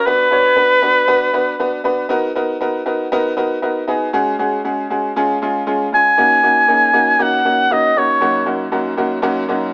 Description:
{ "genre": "soul", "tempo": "118 BPM", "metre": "4/4", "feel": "straight", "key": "unclear", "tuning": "A4 = 445 Hz", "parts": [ { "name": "warm oboe", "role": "melody", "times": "0.0-1.8, 5.9-8.5 s", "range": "A#4 to G#5", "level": "-15 LUFS", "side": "equal", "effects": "none" }, { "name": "bright upright piano", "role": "accompaniment", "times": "0.1-9.7 s", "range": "F#2 to C#5", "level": "-20 LUFS", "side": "equal", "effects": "none" } ], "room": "moderate spring reverb, RT60 1.5 s", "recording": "small speaker sound", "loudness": "-16 LUFS", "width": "mono", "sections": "0.0-9.7 A section", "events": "none", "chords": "0.1 Bm; 2.1 Bmaj7; 4.1 C#sus4; 5.2 C#; 6.2 F#6; 8.2 D#m7/F#" }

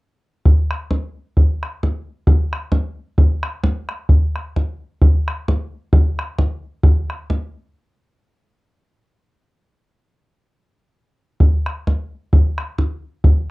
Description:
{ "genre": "celtic folk", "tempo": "131 BPM", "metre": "2/4", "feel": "swing 55% on 8ths", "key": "none", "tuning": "none", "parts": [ { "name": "bodhran", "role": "percussion", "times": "0.5-7.4, 11.4-13.4 s", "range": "none", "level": "-14 LUFS", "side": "equal", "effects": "none" } ], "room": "wet small room reverb, RT60 0.5 s", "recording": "dark, warm production", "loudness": "-16 LUFS", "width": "side -22 dB against mid", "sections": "0.4-7.7 A section; 7.7-13.5 A section", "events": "none", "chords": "none" }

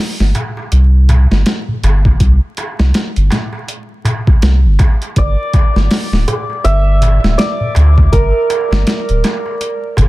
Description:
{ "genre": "trip hop", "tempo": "81 BPM", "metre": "4/4", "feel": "swing 59% on 16ths", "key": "G dorian", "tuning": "A4 = 439 Hz", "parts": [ { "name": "soft dub sub bass", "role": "bass", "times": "0.2-10.1 s", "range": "D1 to D2", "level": "-10 LUFS", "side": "equal", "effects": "none" }, { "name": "boom bap sampler-style drum kit", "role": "drums", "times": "0.2-10.1 s", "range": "hi-hat, kick drum, snare drum", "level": "-14 LUFS", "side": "equal", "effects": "overdrive" }, { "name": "darbuka", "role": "percussion", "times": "0.3-10.1 s", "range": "none", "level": "-21 LUFS", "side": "equal", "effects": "none" }, { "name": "santur", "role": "melody", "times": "5.2-10.1 s", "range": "Bb4 to E5", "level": "-18 LUFS", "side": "right 2 dB", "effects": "vintage 12-bit sampler grit, tape echo" } ], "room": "little or no reverb", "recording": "dense, heavily limited modern master, vinyl crackle", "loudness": "-10 LUFS", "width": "side -18 dB against mid", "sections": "0.0-10.1 A section", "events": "none", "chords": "0.0 C5; 5.2 Gm" }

